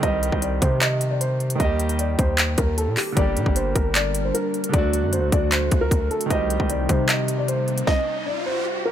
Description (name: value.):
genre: hip hop, trap.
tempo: 153 BPM.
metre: 4/4.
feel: half-time.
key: unclear.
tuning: A4 = 438 Hz.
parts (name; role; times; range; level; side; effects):
dark concert grand piano; melody; 0.0-8.9 s; G4 to Eb5; -25 LUFS; equal; ping-pong delay.
clear grand piano; accompaniment; 0.0-7.9 s; D3 to G4; -28 LUFS; right 3 dB; none.
distorted 808-style bass; bass; 0.0-7.8 s; G1 to C3; -24 LUFS; equal; distortion.
trap drum kit; drums; 0.0-8.0 s; handclaps, hi-hat, kick drum, snare drum; -22 LUFS; equal; none.
warbly tape-like pad; sustained chords; 3.7-7.9 s; C3 to Bb4; -30 LUFS; left 1 dB; chorus, built-in reverb.
riser; sound effects; 7.4-8.7 s; none; -30 LUFS; equal; none.
room: digital ambience.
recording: none.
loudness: -19 LUFS.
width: side -10 dB against mid.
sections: 0.0-8.9 A section.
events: riser 7.4-8.9; stop 7.9-8.9.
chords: 0.0 Cm; 1.6 Eb; 3.2 Gm; 4.7 D; 6.3 Cm; 7.9 N.C..